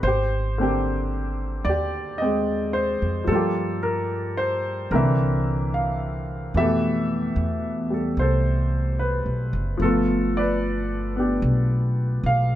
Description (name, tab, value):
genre	jazz ballad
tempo	74 BPM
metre	4/4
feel	swing 68% on 8ths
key	unclear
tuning	A4 = 441 Hz
part	clear baby grand piano	accompaniment	0.0-12.6 s	B2 to F5	-23 LUFS	equal	none
part	upright bass	bass	0.0-12.6 s	F#1 to G2	-25 LUFS	equal	none
room	light reverb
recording	dark, warm production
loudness	-21 LUFS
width	side -12 dB against mid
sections	0.0-12.6 A section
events	none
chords	0.0 Abmaj9#11; 3.3 Gm7; 4.9 C9; 6.6 Fmaj9#11; 9.8 G9